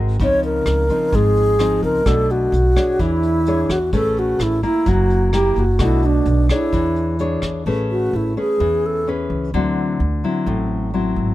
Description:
bossa nova; 129 BPM; 4/4; straight; A major; A4 = 440 Hz
nylon-string guitar; accompaniment; 0.0-11.3 s; G#2 to C#5; -21 LUFS; left 3 dB
upright bass; bass; 0.0-11.3 s; F#1 to E2; -20 LUFS; right 1 dB
mellow alto flute; melody; 0.2-9.1 s; D4 to C#5; -19 LUFS; right 1 dB
vintage brush drum kit; drums; 0.2-7.5 s; hi-hat, kick drum, rim click; -25 LUFS; equal
little or no reverb; close, detailed microphones; -16 LUFS; side -15 dB against mid
0.0-7.7 A section; 7.7-11.3 B section
alto flute solo 7.7-11.3
0.2 C#maj9; 2.1 Bm7; 3.0 E6; 3.9 Amaj9; 4.9 F#7b9; 5.8 Bm7; 6.7 E6; 7.7 Amaj9; 9.5 D9
| 0.20 0.67 1.13 1.60 | 2.06 2.53 3.00 3.46 | 3.93 4.40 4.86 5.33 | 5.79 6.26 6.73 7.20 | 7.66 8.13 8.60 9.06 | 9.53 10.00 10.46 10.93

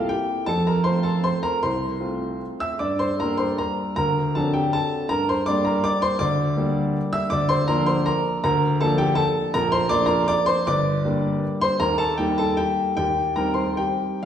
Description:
classical, piano waltz; 128-173 BPM; 3/4; rubato; Bb major from 7.3 s; A4 = 438 Hz
warm upright piano; solo; 0.0-14.3 s; G1 to E6; -20 LUFS; equal
wet recital hall reverb, RT60 1.4 s; heard from further back in the room; -20 LUFS; side -9 dB against mid
0.0-14.3 A section
0.5 F; 2.8 Gm; 4.0 D7; 5.1 Gm; 7.3 Bb/D; 9.5 Bb; 10.7 Gm; 11.8 Eb; 13.0 Cm/Eb
0.10 | 0.48 0.86 1.26 | 1.64 2.02 2.41 | 2.80 3.19 3.59 | 3.98 4.36 4.74 | 5.11 5.47 5.84 | 6.21 6.58 6.96 | 7.32 7.69 8.07 | 8.44 8.80 9.18 | 9.54 9.90 10.28 | 10.66 11.04 11.42 | 11.80 12.18 12.58 | 12.97 13.36 13.77 | 14.22

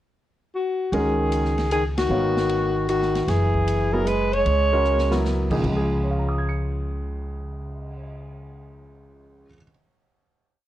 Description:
modal jazz; 153 BPM; 3/4; swing 67% on 8ths; Db mixolydian; A4 = 440 Hz
mellow alto saxophone; melody; 0.5-5.2 s; Gb4 to Db5; -23 LUFS; left 2 dB; plate reverb
clear trombone; second line; 0.9-5.2 s; Eb3 to Ab3; -27 LUFS; right 3 dB
warm grand piano; accompaniment; 0.9-9.7 s; Db2 to Db7; -26 LUFS; equal
upright bass; bass; 0.9-9.5 s; Gb1 to Db2; -26 LUFS; equal
swinging big-band drum kit; drums; 0.9-7.9 s; crash cymbal, cymbal swell, hi-hat, kick drum, ride cymbal, snare drum; -34 LUFS; equal
moderate club reverb, RT60 0.8 s; worn, warbling old tape, cassette tape, warbly pitch drift; -20 LUFS; side -13 dB against mid
0.0-0.9 pickup bar; 0.9-5.6 A section; 5.6-8.0 final chord
band accent 1.9; drum fill 4.8-5.2
0.0 N.C.; 0.9 Db9sus4; 3.3 Gb9sus4; 5.6 Db
0.14 0.53 | 0.93 1.32 1.71 | 2.10 2.50 2.89 | 3.28 3.67 4.06 | 4.46 4.85 5.24 | 5.63 6.03 6.42 | 6.81 7.21 7.60

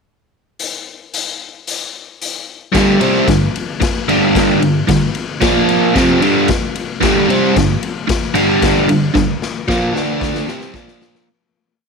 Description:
garage rock duo or trio; 112 BPM; 4/4; straight; G minor; A4 = 442 Hz
raw garage drum kit; drums; 0.6-11.3 s; hi-hat, kick drum, ride cymbal, snare drum; -19 LUFS; left 3 dB
biting overdriven guitar; riff; 2.7-11.3 s; F2 to D4; -13 LUFS; right 1 dB
light reverb, studio ambience; 1960s-style stereo; -13 LUFS; side -4 dB against mid
0.6-2.7 pickup bar; 2.7-11.3 riff
fade-out 9.2-11.3; drum fill 9.2-11.3
0.6 N.C.; 2.7 G5; 5.4 Bb5; 6.0 Gm; 10.0 D5; 10.5 C5; 10.7 Bb5
| 0.58 1.12 1.66 2.19 | 2.73 3.27 3.81 4.34 | 4.88 5.42 5.95 6.49 | 7.02 7.56 8.09 8.62 | 9.15 9.69 10.22 10.75

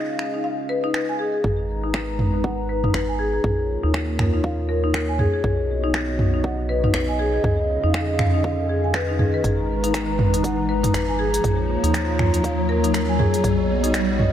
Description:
afro house; 120 BPM; 4/4; swing 59% on 16ths; G# dorian; A4 = 440 Hz
dark analog pad; sustained chords; 0.0-14.3 s; G#3 to A#5; -26 LUFS; equal; chorus, sidechain pumping
deep house drum kit; drums; 0.2-14.3 s; finger snaps, hi-hat, toms; -24 LUFS; right 1 dB
marimba with medium hard mallets; arpeggios; 0.3-13.9 s; D#4 to G#5; -25 LUFS; left 2 dB; sidechain pumping, low-pass filter, digital delay
round analog bass; bass; 1.4-14.3 s; G#1 to E#2; -25 LUFS; equal; tube saturation, sidechain pumping
electronic kick drum; drums; 1.4-14.1 s; -28 LUFS; equal; high-pass filter on kick
riser; sound effects; 5.1-14.3 s; -29 LUFS; left 1 dB
light reverb; -19 LUFS; side -10 dB against mid
0.0-1.4 A section; 1.4-14.3 B section
build-up 1.4-14.3; filter sweep on marimba 1.4-14.3; riser 5.1-14.3
0.0 C#; 1.4 G#m; 3.4 A#m7; 5.4 B; 7.4 C#; 9.4 G#m; 11.4 A#m7; 13.4 B
0.44 0.94 | 1.44 1.94 2.44 2.94 | 3.44 3.94 4.44 4.94 | 5.44 5.94 6.44 6.94 | 7.44 7.94 8.44 8.94 | 9.44 9.94 10.44 10.94 | 11.44 11.94 12.44 12.94 | 13.44 13.94

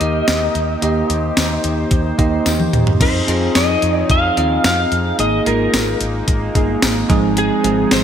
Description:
1980s-style pop; 110 BPM; 4/4; straight; A4 = 442 Hz
lightly driven lead guitar; melody; 0.0-8.0 s; Ab4 to F5; -20 LUFS; equal; wide subtle chorus, digital delay
bell-like tine electric piano; accompaniment; 0.0-8.0 s; F3 to Eb5; -19 LUFS; right 2 dB; lush chorus
chorused pulse-width pad; sustained chords; 0.0-8.0 s; Eb3 to C5; -26 LUFS; left 2 dB
woody fretless electric bass; bass; 0.0-8.0 s; G1 to F2; -22 LUFS; equal
clean 12-bit digital drum machine; drums; 0.0-8.0 s; crash cymbal, hi-hat, kick drum, snare drum, tambourine, toms; -18 LUFS; equal
tambourine; percussion; 0.3-8.0 s; -33 LUFS; left 7 dB
moderate lush hall reverb, RT60 2.1 s; bright 1980s-style digital production; -14 LUFS; side -8 dB against mid
0.0-3.0 A section; 3.0-8.0 B section
drum fill 2.5-3.0
0.0 Eb; 3.0 Fm7; 5.2 Absus2; 7.1 Fm7/Ab
0.28 | 0.82 1.37 1.92 2.46 | 3.01 3.55 4.10 4.64 | 5.19 5.73 6.28 6.82 | 7.37 7.92

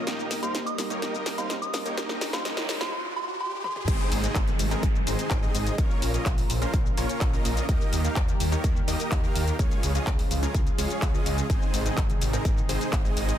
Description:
EDM, festival progressive house; 126 BPM; 4/4; straight; Ab major; A4 = 440 Hz
lush unison pad; sustained chords; 0.0-13.4 s; C3 to Eb5; -36 LUFS; left 1 dB; chorus, phaser, sidechain pumping
big supersaw lead; riff; 0.0-13.4 s; Ab3 to F5; -32 LUFS; right 1 dB; sidechain pumping, ping-pong delay
riser, noise sweep and downlifter; sound effects; 0.0-7.7 s; -37 LUFS; right 1 dB
warm concert grand piano; accompaniment; 0.1-2.9 s; G3 to C5; -37 LUFS; right 3 dB; sidechain pumping, ping-pong delay
big-room dance drum kit; drums; 0.1-13.4 s; crash cymbal, handclaps, hi-hat, shaker, snare drum, toms; -33 LUFS; left 1 dB
soft synth bell; melody; 0.4-3.8 s; C6 to Eb6; -34 LUFS; right 1 dB; chorus, ping-pong delay
wide detuned saw bass; bass; 3.9-13.3 s; Ab1 to Eb2; -29 LUFS; equal; chorus, sidechain pumping
electronic kick drum; drums; 3.9-13.0 s; -25 LUFS; equal
light reverb; dense, heavily limited modern master, high-pass filter; -24 LUFS; side -11 dB against mid
0.0-3.9 A section; 3.9-13.4 B section
build-up 0.0-3.9; drum fill 0.0-2.9, 3.6; riser 0.0-3.9; filter sweep 0.0-3.9; noise sweep 2.0-3.9; drop 3.9-13.4
0.1 Eb; 2.0 Db; 3.9 Ab; 5.8 Bbm; 7.7 Eb; 9.6 Db; 11.5 Ab
| 0.07 0.55 1.02 1.50 | 1.98 2.45 2.93 3.40 | 3.88 4.36 4.83 5.31 | 5.78 6.26 6.74 7.21 | 7.69 8.16 8.64 9.12 | 9.59 10.07 10.55 11.02 | 11.50 11.97 12.45 12.93

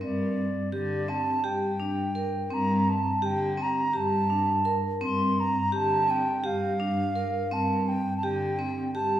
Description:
contemporary instrumental, chamber music in an uneven meter; 168 BPM (eighths); 7/8; straight; G minor; A4 = 442 Hz
bright baroque flute; melody; 0.0-9.2 s; D5 to C6; -28 LUFS; right 1 dB
vibraphone with hard mallets; arpeggios; 0.0-9.2 s; C4 to Bb4; -30 LUFS; equal
warm cello; bass; 0.0-9.2 s; G2 to D3; -31 LUFS; equal
wet recital hall reverb, RT60 1.7 s; heard from further back in the room; -24 LUFS; side -12 dB against mid
0.0-9.2 A section
0.0 Gsus4
| 0.01 0.37 0.73 1.08 1.44 1.80 2.16 | 2.52 2.87 3.23 3.59 3.95 4.30 4.66 | 5.02 5.38 5.73 6.09 6.45 6.80 7.16 | 7.52 7.88 8.23 8.59 8.95

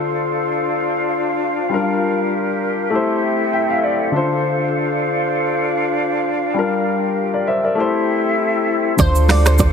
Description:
afrobeats; 99 BPM; 4/4; swing 55% on 16ths; D minor; A4 = 440 Hz
warm grand piano; accompaniment; 0.0-9.7 s; D3 to G5; -20 LUFS; left 3 dB
mellow hollow flute section; sustained chords; 0.0-9.7 s; C4 to F5; -19 LUFS; left 1 dB
glassy wavetable pluck; melody; 9.0-9.6 s; C5 to D5; -21 LUFS; right 2 dB; chorus
nylon-string guitar; riff; 9.0-9.7 s; D5 to F5; -21 LUFS; right 5 dB
warm sub bass; bass; 9.0-9.7 s; D2; -14 LUFS; right 1 dB
afro-pop drum kit; drums; 9.0-9.7 s; finger snaps, hi-hat, kick drum, rim click, shaker; -17 LUFS; right 1 dB
congas; percussion; 9.0-9.4 s; -25 LUFS; right 3 dB
moderate lush hall reverb, RT60 2.1 s; heavily compressed radio sound, multiband compression; -16 LUFS; side -6 dB against mid
0.0-9.0 A section
grand piano fill 3.2-4.1
0.0 Dm7; 1.7 Gm7; 2.9 Am7; 4.1 Dm7; 6.6 Gm7; 7.8 Am7; 9.0 Dm7
0.50 1.11 | 1.72 2.32 2.93 3.53 | 4.14 4.75 5.35 5.96 | 6.56 7.17 7.78 8.38 | 8.99 9.60

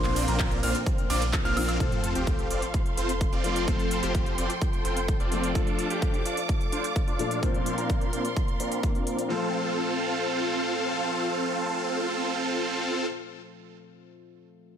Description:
EDM, festival progressive house; 128 BPM; 4/4; straight; F major; A4 = 441 Hz
felt-muted upright piano; accompaniment; 0.0-14.8 s; Bb2 to Bb4; -34 LUFS; left 4 dB; sidechain pumping, ping-pong delay
warm symphonic string section; sustained chords; 0.0-13.1 s; D3 to D6; -35 LUFS; right 2 dB; sidechain pumping
clear baby grand piano; arpeggios; 0.0-1.8 s; Bb5 to F6; -34 LUFS; equal; sidechain pumping, ping-pong delay
big supersaw lead; riff; 0.0-13.1 s; Bb3 to F5; -29 LUFS; right 1 dB; phaser, cassette tape, sidechain pumping, low-pass filter, ping-pong delay
saturated sub bass; bass; 0.0-5.5 s; F1 to Bb1; -32 LUFS; equal; sidechain pumping
big-room dance drum kit; drums; 0.0-9.3 s; handclaps, hi-hat, ride cymbal, woodblock; -35 LUFS; right 1 dB
electronic kick drum; drums; 0.4-8.9 s; -27 LUFS; equal
sub drop; sound effects; 1.8-3.7 s; -37 LUFS; right 1 dB
light reverb; -24 LUFS; side -9 dB against mid
0.0-1.8 A section; 1.8-9.3 B section; 9.3-13.1 C section
drop 0.0-1.8; impact 1.8-3.7; filter sweep on supersaw synth 1.8-9.3
0.0 Bbadd9; 1.8 F; 5.6 Dm; 7.4 Bbadd9; 9.3 F
0.40 0.86 1.33 | 1.80 2.27 2.74 3.21 | 3.68 4.15 4.62 5.08 | 5.55 6.02 6.49 6.96 | 7.43 7.90 8.37 8.83 | 9.30 9.77 10.24 10.71 | 11.18 11.65 12.12 12.58

